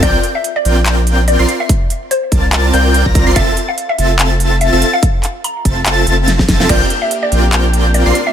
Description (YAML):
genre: future bass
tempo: 144 BPM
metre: 4/4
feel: swing 56% on 16ths, half-time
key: unclear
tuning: A4 = 441 Hz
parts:
  - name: mallet-like synth pluck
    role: melody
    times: 0.0-8.3 s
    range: C5 to Bb5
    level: -19 LUFS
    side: left 1 dB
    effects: lush chorus, sidechain pumping, ping-pong delay
  - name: airy dreamy lead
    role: arpeggios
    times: 0.0-8.1 s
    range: G6 to C7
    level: -20 LUFS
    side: left 2 dB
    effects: chorus, cassette tape, sidechain pumping
  - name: supersaw chords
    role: riff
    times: 0.0-8.1 s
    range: C4 to C6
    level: -17 LUFS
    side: right 1 dB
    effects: sidechain pumping, ping-pong delay
  - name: saturated sub bass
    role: bass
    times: 0.0-8.1 s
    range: F1 to C2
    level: -14 LUFS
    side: equal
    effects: sidechain pumping
  - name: big-room dance drum kit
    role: drums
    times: 0.0-8.2 s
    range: crash cymbal, handclaps, hi-hat, snare drum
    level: -18 LUFS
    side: equal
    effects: small room reverb
  - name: electronic kick drum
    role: drums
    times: 0.0-6.8 s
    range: none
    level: -14 LUFS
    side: equal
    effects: small room reverb
  - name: rich studio string section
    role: sustained chords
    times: 6.7-8.3 s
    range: C3 to A5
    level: -23 LUFS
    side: left 1 dB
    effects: sidechain pumping
room: little or no reverb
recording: none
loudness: -11 LUFS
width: side -9 dB against mid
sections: 0.0-6.7 A section; 6.7-8.3 A section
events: drop 0.0-6.7, 6.7-8.3; drum fill 6.3-6.7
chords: 0.0 Bb69; 1.5 C13sus4; 3.4 Fmaj7; 6.7 Bb69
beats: | 0.03 0.44 0.86 1.28 | 1.69 2.11 2.53 2.94 | 3.36 3.78 4.19 4.61 | 5.03 5.44 5.86 6.28 | 6.69 7.11 7.53 7.94